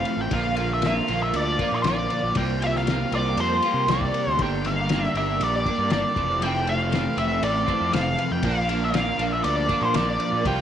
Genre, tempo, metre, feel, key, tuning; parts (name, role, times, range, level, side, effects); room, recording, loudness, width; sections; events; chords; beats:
psychedelic rock; 118 BPM; 4/4; straight; A4 = 439 Hz
octave-fuzz lead guitar; melody; 0.0-10.6 s; C5 to G5; -25 LUFS; equal; wah, distortion, slapback echo
ensemble organ-string; sustained chords; 0.0-10.6 s; Bb3 to F5; -34 LUFS; right 13 dB; ensemble chorus
twelve-string electric guitar; riff; 0.0-10.6 s; F2 to G4; -27 LUFS; right 1 dB; harmonic tremolo, double-tracked left and right
fuzz fingered electric bass; bass; 0.0-10.6 s; F1 to C3; -28 LUFS; right 1 dB; overdrive
cloth-damped thuddy drum kit; drums; 0.1-10.6 s; kick drum, ride cymbal, snare drum; -30 LUFS; left 4 dB
light reverb, studio ambience; 1960s-style stereo; -21 LUFS; side -9 dB against mid
0.0-10.6 A section
0.3 Bb; 2.4 C7sus4; 4.4 Gm; 6.2 Fmaj7; 8.4 Bb
| 0.32 0.83 1.34 1.85 | 2.35 2.86 3.37 3.88 | 4.39 4.89 5.40 5.91 | 6.42 6.92 7.43 7.93 | 8.44 8.94 9.45 9.95 | 10.46